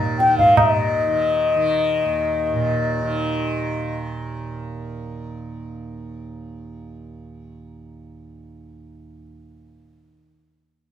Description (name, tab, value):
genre	indian classical, Hindustani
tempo	160 BPM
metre	7/4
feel	straight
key	unclear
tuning	A4 = 440 Hz
part	tanpura	drone	0.0-10.2 s	Eb2 to Eb3	-27 LUFS	right 3 dB	none
part	mellow bansuri	melody	0.2-4.0 s	Eb5 to G5	-19 LUFS	left 3 dB	none
part	tabla	percussion	0.2-0.7 s	none	-21 LUFS	right 1 dB	none
room	wet small room reverb, RT60 0.5 s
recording	heard from further back in the room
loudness	-18 LUFS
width	side -10 dB against mid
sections	0.6-3.2 A section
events	none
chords	none